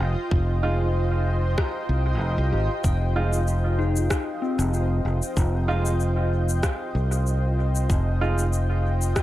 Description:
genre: ambient dub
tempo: 95 BPM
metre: 4/4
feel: swing 54% on 16ths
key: F minor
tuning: A4 = 439 Hz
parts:
  - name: granular cloud pad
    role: sustained chords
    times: 0.0-9.2 s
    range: F4 to G5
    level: -30 LUFS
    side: equal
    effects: built-in reverb
  - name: soft synth bell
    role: arpeggios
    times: 0.0-9.2 s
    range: C4 to Bb5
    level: -34 LUFS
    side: left 5 dB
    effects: chorus, dub echo
  - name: fingered electric bass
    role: bass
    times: 0.0-9.1 s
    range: F1 to C2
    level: -22 LUFS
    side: equal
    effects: none
  - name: electronic kick drum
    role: drums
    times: 0.3-9.2 s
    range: none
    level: -24 LUFS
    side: equal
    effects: overdrive
  - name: clear upright piano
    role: stabs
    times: 0.6-8.4 s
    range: Ab3 to F4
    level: -32 LUFS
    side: right 3 dB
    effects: dub echo
  - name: electronic rim click and shaker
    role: drums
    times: 1.6-9.2 s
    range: none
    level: -32 LUFS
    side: left 1 dB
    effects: overdrive, dub echo
room: light reverb, digital ambience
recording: echo-heavy mix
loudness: -21 LUFS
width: side -15 dB against mid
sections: 0.0-9.2 A section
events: none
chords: 0.0 Fm7

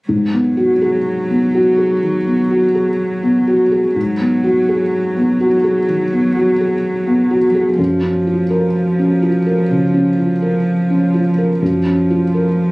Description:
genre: neoclassical piano and strings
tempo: 63 BPM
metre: 4/4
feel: rubato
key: G# dorian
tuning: A4 = 440 Hz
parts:
  - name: warm cello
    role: second line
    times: 0.1-12.7 s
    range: E#3 to F#3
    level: -18 LUFS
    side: right 1 dB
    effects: none
  - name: felt-muted upright piano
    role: accompaniment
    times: 0.1-12.7 s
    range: F#2 to A#4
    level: -14 LUFS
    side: equal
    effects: none
room: light reverb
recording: recorded on a phone in the room, studio reverb, compression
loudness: -13 LUFS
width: side -24 dB against mid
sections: 0.1-12.7 A section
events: none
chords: 0.1 G#m7; 7.8 F#maj7

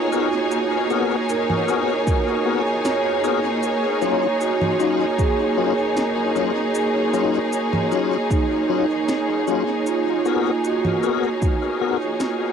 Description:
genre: ambient dub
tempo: 77 BPM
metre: 4/4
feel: straight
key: Eb minor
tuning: A4 = 440 Hz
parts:
  - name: rich studio string section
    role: sustained chords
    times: 0.0-12.5 s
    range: Bb3 to Ab5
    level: -23 LUFS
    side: left 1 dB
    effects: cassette tape, plate reverb
  - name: vibraphone with medium mallets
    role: arpeggios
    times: 0.0-12.5 s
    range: Eb4 to Db5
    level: -23 LUFS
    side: right 9 dB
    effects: cassette tape, tape echo, plate reverb
  - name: tonewheel organ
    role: stabs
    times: 0.1-12.0 s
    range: Gb3 to Bb4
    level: -25 LUFS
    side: left 11 dB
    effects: chorus vibrato, slow rotary speaker, cassette tape, dub echo, plate reverb
  - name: electronic cabasa, congas and snare drum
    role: drums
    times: 0.1-12.4 s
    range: none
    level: -30 LUFS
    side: equal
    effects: overdrive, cassette tape, dub echo
  - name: electronic kick drum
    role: drums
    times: 2.1-11.6 s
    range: none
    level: -21 LUFS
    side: equal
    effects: overdrive, cassette tape
room: moderate studio reverb, RT60 0.5 s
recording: home recording on cassette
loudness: -18 LUFS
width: side -7 dB against mid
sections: 0.0-12.5 A section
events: none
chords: 0.0 Abm9; 3.6 Ebm9; 9.9 Abm9

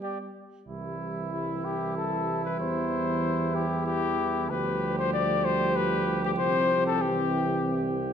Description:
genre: classical, brass quintet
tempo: 95 BPM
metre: 3/4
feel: rubato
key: C major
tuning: A4 = 440 Hz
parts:
  - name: mellow trumpet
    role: melody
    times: 0.0-8.0 s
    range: E4 to D5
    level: -28 LUFS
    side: left 6 dB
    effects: none
  - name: clear trumpet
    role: second line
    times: 0.0-8.1 s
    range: E4 to G4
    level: -34 LUFS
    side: right 5 dB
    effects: none
  - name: dark trombone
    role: accompaniment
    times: 0.0-8.0 s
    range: E3 to G3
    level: -34 LUFS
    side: right 3 dB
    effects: none
  - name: mellow French horn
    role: accompaniment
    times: 0.7-8.1 s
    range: G3 to C4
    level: -35 LUFS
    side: left 3 dB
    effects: none
  - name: warm tuba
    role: bass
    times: 0.7-8.1 s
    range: C2 to E2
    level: -32 LUFS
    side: right 4 dB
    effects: none
room: wet recital hall reverb, RT60 1.8 s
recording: none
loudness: -25 LUFS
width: side -8 dB against mid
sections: 0.7-8.1 A section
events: none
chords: 0.0 G5; 0.7 C; 2.6 C/E; 4.5 G5/D; 6.4 C

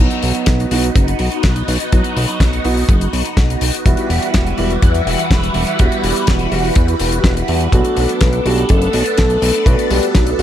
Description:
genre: italo disco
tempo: 124 BPM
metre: 4/4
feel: straight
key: unclear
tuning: A4 = 441 Hz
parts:
  - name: phased string machine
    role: sustained chords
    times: 0.0-10.4 s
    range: E3 to B4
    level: -20 LUFS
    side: equal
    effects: ensemble chorus, phaser
  - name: dark concert grand piano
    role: stabs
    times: 0.0-10.4 s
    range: F#3 to F#4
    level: -22 LUFS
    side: right 4 dB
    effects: tape echo
  - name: fat analog bass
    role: bass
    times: 0.0-10.4 s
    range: E1 to E2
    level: -19 LUFS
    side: equal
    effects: none
  - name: damped 70s drum kit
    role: drums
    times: 0.1-10.4 s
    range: hi-hat, snare drum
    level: -21 LUFS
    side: left 3 dB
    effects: studio reverb
  - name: kick drum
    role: drums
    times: 0.5-10.2 s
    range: none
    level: -14 LUFS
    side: equal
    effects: studio reverb
  - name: soft octave-layered synth lead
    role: melody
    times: 7.7-10.4 s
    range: F#4 to B4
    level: -18 LUFS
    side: left 1 dB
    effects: chorus, tape echo
room: small room reverb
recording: none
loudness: -12 LUFS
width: side -11 dB against mid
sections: 0.0-10.4 A section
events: none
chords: 0.0 B; 3.9 Emadd9; 7.7 Bm7

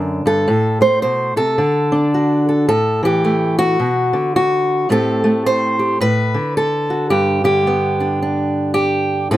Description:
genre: folk, solo fingerstyle acoustic guitar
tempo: 108 BPM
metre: 4/4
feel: swing 62% on 8ths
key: A dorian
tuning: A4 = 440 Hz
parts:
  - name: fingerpicked steel-string acoustic guitar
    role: solo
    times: 0.0-9.4 s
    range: F#2 to C5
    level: -14 LUFS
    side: equal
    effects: none
room: light reverb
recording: none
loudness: -14 LUFS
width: side -14 dB against mid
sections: 0.5-9.4 A section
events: none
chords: 0.5 Am; 1.6 D; 2.7 A5; 3.8 Bm; 4.9 Am7; 6.0 D/A; 7.1 G

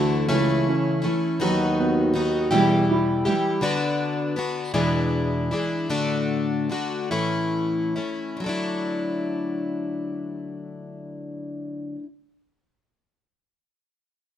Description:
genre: acoustic folk duo or small band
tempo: 45-54 BPM (dotted quarters)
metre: 6/8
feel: straight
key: D major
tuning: A4 = 440 Hz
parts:
  - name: picked plugged-in twelve-string acoustic guitar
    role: accompaniment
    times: 0.0-12.1 s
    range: E2 to G4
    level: -23 LUFS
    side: left 2 dB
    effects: none
  - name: felt-muted upright piano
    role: arpeggios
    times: 0.0-3.7 s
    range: E3 to F#4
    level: -24 LUFS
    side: right 3 dB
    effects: none
  - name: mellow tuba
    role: bass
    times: 0.0-2.9 s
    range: C#2 to E2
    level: -27 LUFS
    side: right 1 dB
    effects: none
room: moderate studio reverb, RT60 0.8 s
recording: minimal, uncompressed stereo recording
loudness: -21 LUFS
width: side -10 dB against mid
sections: 0.0-8.4 A section; 8.4-11.1 B section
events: slowing down 3.6-8.4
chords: 0.3 A/C#; 1.4 B/D#; 2.5 Em; 3.6 Bm/D; 4.8 E7; 5.9 D/A; 7.1 A; 8.4 Dadd9

